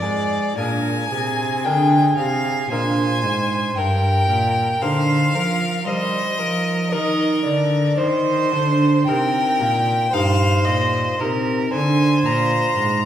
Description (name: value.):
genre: classical, baroque-style sonata movement with continuo.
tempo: 57 BPM.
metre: 4/4.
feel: straight.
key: Eb major.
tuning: A4 = 440 Hz.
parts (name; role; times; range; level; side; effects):
rich violin; melody; 0.0-13.1 s; Bb4 to Bb5; -22 LUFS; left 2 dB; none.
rich violin; second line; 0.0-13.1 s; Ab4 to Eb5; -24 LUFS; right 2 dB; none.
lute; accompaniment; 0.0-13.1 s; G2 to Bb4; -24 LUFS; right 2 dB; none.
warm cello; bass; 0.0-13.1 s; G2 to G3; -22 LUFS; equal; none.
room: wet recital hall reverb, RT60 1.7 s.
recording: heard from further back in the room.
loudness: -17 LUFS.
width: side -10 dB against mid.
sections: 0.0-13.1 A section.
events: none.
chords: 0.0 Bb7; 3.8 Eb/G; 8.0 Eb; 12.2 N.C..